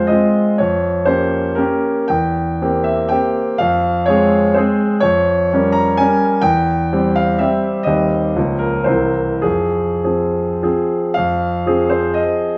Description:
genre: classical, romantic triple-time dance for piano with dotted rhythms.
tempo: 97-134 BPM.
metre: 3/4.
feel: rubato.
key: F minor.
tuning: A4 = 441 Hz.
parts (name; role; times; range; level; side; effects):
bright concert grand piano; solo; 0.0-12.6 s; C2 to Bb5; -16 LUFS; equal; none.
room: moderate scoring stage reverb, RT60 1.9 s.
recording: close, detailed microphones.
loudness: -16 LUFS.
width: mono.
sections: 0.0-11.2 A section; 11.2-12.6 A section.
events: none.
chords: 0.0 Fm; 0.6 Gm7b5/F; 2.1 C7/E; 3.6 Fm; 5.0 Gm7b5/F; 6.4 C/E; 7.9 Cm/Eb; 8.4 Bbm/Db; 8.9 C7; 9.4 Fm.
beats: 0.10 | 0.59 1.08 1.59 | 2.11 2.62 3.12 | 3.59 4.07 4.55 | 5.02 5.50 5.98 | 6.44 6.90 7.39 | 7.86 8.36 8.88 | 9.44 10.04 10.63 | 11.17 11.68 12.18.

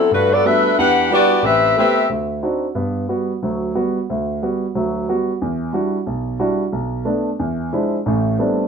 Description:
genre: jazz.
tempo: 181 BPM.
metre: 4/4.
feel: swing 64% on 8ths.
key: unclear.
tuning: A4 = 440 Hz.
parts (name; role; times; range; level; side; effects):
warm saxophone section; melody; 0.0-2.1 s; A3 to F#5; -13 LUFS; left 2 dB; none.
warm concert grand piano; accompaniment; 0.1-8.6 s; A1 to G4; -19 LUFS; right 1 dB; none.
room: wet studio reverb, RT60 0.7 s.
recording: band playing live in one room.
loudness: -16 LUFS.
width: side -6 dB against mid.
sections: 0.0-5.4 A section; 5.4-8.7 B section.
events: none.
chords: 0.1 Gmaj9; 0.8 Em9; 1.4 Am9; 2.1 D7b9; 2.8 Gmaj7; 5.4 Em9; 6.7 Bm7; 7.4 E7b9; 8.1 Am11.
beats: | 0.10 0.44 0.77 1.10 | 1.43 1.76 2.10 2.43 | 2.76 3.09 3.42 3.75 | 4.08 4.42 4.75 5.08 | 5.41 5.74 6.08 6.41 | 6.74 7.07 7.40 7.73 | 8.07 8.40.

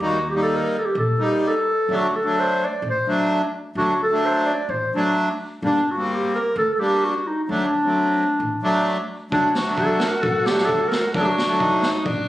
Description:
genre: klezmer.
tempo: 129 BPM.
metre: 4/4.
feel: straight.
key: D phrygian dominant.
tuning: A4 = 441 Hz.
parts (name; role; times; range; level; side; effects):
accordion; accompaniment; 0.0-11.9 s; F#3 to Eb4; -22 LUFS; equal; none.
upright bass; bass; 0.0-12.2 s; G1 to Eb2; -30 LUFS; equal; none.
warm clarinet; melody; 0.1-12.3 s; D4 to D5; -21 LUFS; equal; none.
growling alto saxophone; second line; 9.3-12.3 s; D4 to F#4; -26 LUFS; left 1 dB; none.
street-band drum kit; drums; 9.3-12.2 s; kick drum, snare drum; -26 LUFS; equal; none.
room: moderate small room reverb, RT60 0.6 s.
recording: recorded on a phone in the room, studio reverb, compression.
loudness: -18 LUFS.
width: side -15 dB against mid.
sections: 0.0-9.3 A section; 9.3-12.3 A section.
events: speeding up 0.0-12.3.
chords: 0.0 Eb; 1.9 D; 5.6 Gm; 7.5 D.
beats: | 0.01 0.48 0.95 1.42 | 1.89 2.36 2.83 3.30 | 3.76 4.23 4.70 5.16 | 5.62 6.09 6.55 7.02 | 7.48 7.94 8.40 8.86 | 9.32 9.78 10.24 10.69 | 11.15 11.61 12.06.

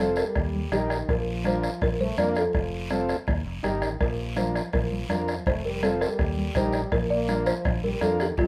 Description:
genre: latin, cumbia.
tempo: 165 BPM.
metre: 4/4.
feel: straight.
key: unclear.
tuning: A4 = 440 Hz.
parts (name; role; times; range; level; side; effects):
folk marimba with soft mallets; melody; 0.0-8.5 s; F4 to D5; -31 LUFS; equal; none.
warm French horn; second line; 0.0-8.5 s; C3 to Bb3; -37 LUFS; equal; none.
overdriven combo organ; accompaniment; 0.0-8.3 s; C4 to Bb4; -32 LUFS; equal; none.
fingered electric bass; bass; 0.0-8.5 s; F1 to F2; -33 LUFS; equal; none.
bombo; percussion; 0.0-8.5 s; none; -32 LUFS; equal; none.
guiro; percussion; 0.2-8.5 s; none; -44 LUFS; equal; none.
congas; percussion; 0.5-8.5 s; none; -35 LUFS; equal; none.
room: light reverb.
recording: none.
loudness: -26 LUFS.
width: mono.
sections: 0.0-8.5 A section.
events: none.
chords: 0.4 Eb; 1.1 Bb; 2.5 F; 3.3 Eb; 4.0 Bb; 5.5 F; 6.2 Eb; 6.9 Bb.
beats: 0.36 0.72 | 1.09 1.45 1.82 2.18 | 2.55 2.91 3.28 3.64 | 4.00 4.37 4.73 5.10 | 5.46 5.83 6.19 6.56 | 6.92 7.29 7.65 8.02 | 8.38.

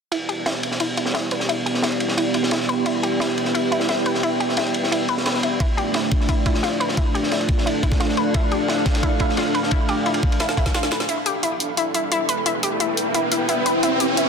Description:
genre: dark technical drum and bass.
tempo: 175 BPM.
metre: 4/4.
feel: straight.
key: E phrygian.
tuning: A4 = 441 Hz.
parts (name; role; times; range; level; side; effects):
dark analog pad; sustained chords; 0.1-14.3 s; A3 to D5; -25 LUFS; right 1 dB; chorus, sidechain pumping.
analog pluck; arpeggios; 0.1-14.2 s; E4 to B4; -25 LUFS; left 1 dB; chorus, sidechain pumping, tape echo.
crunchy breakbeat drum kit; drums; 0.1-11.1 s; ride cymbal, snare drum; -26 LUFS; equal; high-pass filter on cymbals, high-pass filter on snare, high-pass filter on room.
granular cloud pad; texture; 2.3-14.3 s; D4 to G5; -26 LUFS; equal; built-in reverb, sidechain pumping.
electronic kick drum; drums; 5.6-10.7 s; none; -21 LUFS; equal; overdrive.
drum and bass drum kit; drums; 10.4-14.2 s; hi-hat, snare drum; -25 LUFS; equal; overdrive.
riser; sound effects; 11.8-14.3 s; none; -26 LUFS; right 2 dB; none.
room: moderate lush hall reverb, RT60 2.2 s.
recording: dense, heavily limited modern master.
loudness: -18 LUFS.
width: side -6 dB against mid.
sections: 0.1-11.1 A section; 11.1-14.3 B section.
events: fade-in on ambient pad 0.1-11.1; filter sweep on synth arpeggio sound 0.1-11.1; drum fill 10.4-11.1; build-up 11.1-14.3; riser 11.8-14.3.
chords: 0.1 Em7; 5.6 Dm; 11.1 Em7.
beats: | 0.12 0.46 0.80 1.15 | 1.49 1.83 2.17 2.52 | 2.86 3.20 3.54 3.89 | 4.23 4.57 4.92 5.26 | 5.60 5.95 6.29 6.63 | 6.97 7.32 7.66 8.00 | 8.35 8.69 9.03 9.37 | 9.72 10.06 10.40 10.74 | 11.09 11.43 11.77 12.12 | 12.46 12.80 13.14 13.49 | 13.83 14.17.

